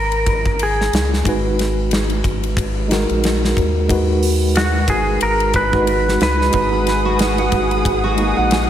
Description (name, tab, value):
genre	trip hop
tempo	91 BPM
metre	4/4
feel	swing 57% on 16ths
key	G# minor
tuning	A4 = 440 Hz
part	clean lap steel guitar	melody	0.0-7.2 s	F#4 to B4	-20 LUFS	equal	tape echo
part	round analog bass	bass	0.0-8.7 s	G#1 to D#2	-20 LUFS	equal	none
part	gated 80s drum kit	drums	0.1-8.7 s	hi-hat, kick drum, ride cymbal, snare drum	-21 LUFS	equal	none
part	tine electric piano	accompaniment	1.2-8.7 s	G#3 to B4	-20 LUFS	right 1 dB	fast stereo tremolo, tape echo
part	muted studio violin section	sustained chords	6.5-8.7 s	G#4 to D#6	-22 LUFS	right 1 dB	vintage 12-bit sampler grit
part	wind-like tuned noise texture	texture	7.0-8.7 s	F#4	-27 LUFS	right 6 dB	none
part	nylon-string guitar	arpeggios	6.7-8.5 s	F#4 to B5	-23 LUFS	right 2 dB	analog chorus, analog delay
room	wet lush hall reverb, RT60 1.8 s, small room ambience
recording	dreamy mix soaked in reverb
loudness	-14 LUFS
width	side -10 dB against mid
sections	0.0-8.7 A section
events	none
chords	0.0 G#m7